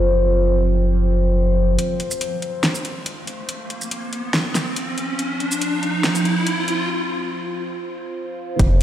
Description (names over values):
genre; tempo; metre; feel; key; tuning
deep dubstep; 141 BPM; 4/4; half-time; unclear; A4 = 440 Hz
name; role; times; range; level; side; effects
overtone-sweeping drone; sustained chords; 0.0-8.8 s; F3 to C4; -24 LUFS; equal; chorus, built-in reverb
saturated sub bass; bass; 0.0-1.8, 8.6-8.8 s; F1 to Gb1; -17 LUFS; equal; none
deep house drum kit; drums; 1.8-8.8 s; hi-hat, shaker, snare drum; -24 LUFS; equal; overdrive
riser; sound effects; 3.0-6.9 s; none; -25 LUFS; equal; none
electronic kick drum; drums; 8.6-8.7 s; none; -16 LUFS; equal; overdrive
room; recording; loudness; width
moderate huge ambient reverb, RT60 5.0 s; played on a big sound system in a bare room, stone room reverb, high-pass filter; -19 LUFS; side -11 dB against mid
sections
0.0-1.8 A section; 1.8-8.6 B section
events
build-up 1.8-8.6; riser 3.0-6.9; break 6.9-8.6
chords
0.0 Gbmaj7(b5, no3); 1.8 F5